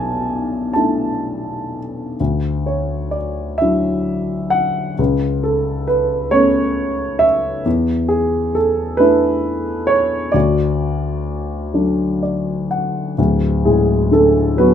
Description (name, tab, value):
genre	classical, lyrical solo piano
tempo	41-45 BPM (dotted quarters)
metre	6/8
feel	rubato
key	D lydian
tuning	A4 = 440 Hz
part	dark baby grand piano	solo	0.0-14.7 s	D1 to A5	-15 LUFS	equal	none
room	moderate studio reverb, RT60 0.6 s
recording	minimal, uncompressed stereo recording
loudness	-15 LUFS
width	side -9 dB against mid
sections	0.0-13.2 A section; 13.2-14.7 A section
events	grand piano fill 11.7-13.2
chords	0.0 E7sus4; 2.2 Dadd9; 5.0 Aadd9/C#; 7.7 E7sus4; 10.3 D